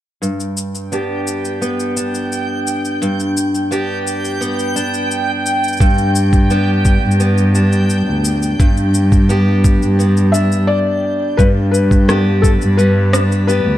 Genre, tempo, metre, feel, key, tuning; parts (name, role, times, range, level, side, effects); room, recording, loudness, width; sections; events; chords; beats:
folktronica; 86 BPM; 4/4; straight; G major; A4 = 439 Hz
picked steel-string acoustic guitar; arpeggios; 0.2-13.8 s; G2 to G4; -19 LUFS; equal; low-pass filter, tape echo
electronic shaker and rim click; drums; 0.2-13.6 s; -23 LUFS; left 1 dB; overdrive
backwards swelling texture; texture; 1.0-13.8 s; G5 to B6; -24 LUFS; right 2 dB; built-in reverb
dark cello; bass; 5.8-13.8 s; D2 to G2; -14 LUFS; equal
electronic kick drum; drums; 5.8-12.6 s; -12 LUFS; equal
felt-muted upright piano; melody; 10.3-13.8 s; A4 to E5; -18 LUFS; left 4 dB; tape echo
light reverb; dark, warm production; -13 LUFS; side -13 dB against mid
0.2-11.4 A section; 11.4-13.8 B section
break 10.7-11.4
0.2 G
| 0.22 0.92 1.62 2.32 | 3.01 3.71 4.41 5.11 | 5.80 6.50 7.20 7.90 | 8.60 9.29 9.99 10.69 | 11.38 12.08 12.78 13.48